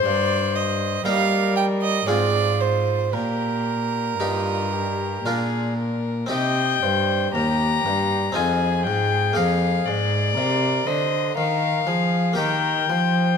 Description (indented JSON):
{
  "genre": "classical, baroque-style sonata movement with continuo",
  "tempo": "59 BPM",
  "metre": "3/4",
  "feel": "straight",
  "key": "Eb major",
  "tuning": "A4 = 440 Hz",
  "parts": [
    { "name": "rich violin", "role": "melody", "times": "0.0-13.4 s", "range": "F4 to Bb5", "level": "-24 LUFS", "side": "left 10 dB", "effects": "none" },
    { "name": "warm violin", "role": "second line", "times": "0.0-13.4 s", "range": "G4 to G5", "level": "-26 LUFS", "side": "right 7 dB", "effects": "none" },
    { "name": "harpsichord", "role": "accompaniment", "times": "0.0-13.4 s", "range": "Eb2 to Bb4", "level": "-27 LUFS", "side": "left 1 dB", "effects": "none" },
    { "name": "rich cello", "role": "bass", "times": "0.0-13.4 s", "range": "Eb2 to G3", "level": "-24 LUFS", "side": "right 1 dB", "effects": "none" }
  ],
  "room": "moderate recital hall reverb, RT60 1.8 s",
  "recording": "close, detailed microphones",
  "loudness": "-19 LUFS",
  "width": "side -6 dB against mid",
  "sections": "0.0-6.3 A section; 6.3-13.4 B section",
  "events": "none",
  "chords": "0.1 Eb/G; 2.1 Fm/Ab; 3.1 Eb/Bb; 5.3 Bb; 6.3 Cm; 8.4 Fm7; 9.4 Bb7/F; 12.4 Eb"
}